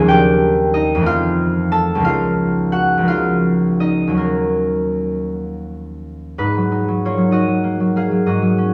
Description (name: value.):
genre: classical, solo harp piece.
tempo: 53-66 BPM (dotted quarters).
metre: 6/8.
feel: rubato.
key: G# dorian.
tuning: A4 = 440 Hz.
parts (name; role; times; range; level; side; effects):
concert harp; solo; 0.0-8.7 s; C#2 to A5; -17 LUFS; equal; none.
room: moderate stone room reverb, RT60 1.1 s.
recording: worn, warbling old tape, cassette tape, warbly pitch drift, small room ambience.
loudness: -17 LUFS.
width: mono.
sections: 0.0-6.4 A section; 6.4-8.7 B section.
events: none.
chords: 0.1 D#maj7; 1.0 Fmaj7; 2.0 C#69; 4.2 D#m7; 6.4 G#m9.